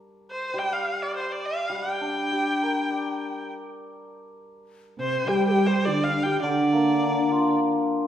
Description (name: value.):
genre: chinese traditional, Chinese chamber ensemble.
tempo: 103 BPM.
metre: 4/4.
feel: rubato.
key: G yu mode.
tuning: A4 = 440 Hz.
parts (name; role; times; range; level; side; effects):
rich erhu; melody; 0.3-7.6 s; C5 to G5; -27 LUFS; equal; none.
hammered dulcimer; accompaniment; 0.5-8.1 s; D3 to D5; -26 LUFS; left 1 dB; none.
dark cello; second line; 5.0-7.6 s; C3 to G3; -27 LUFS; right 3 dB; none.
mellow hollow low xiao; second line; 5.0-7.6 s; D4 to C5; -27 LUFS; left 3 dB; none.
room: wet recital hall reverb, RT60 1.5 s.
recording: heard from further back in the room.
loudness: -22 LUFS.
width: side -10 dB against mid.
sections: 0.0-4.1 A section; 4.1-8.1 B section.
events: none.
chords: none.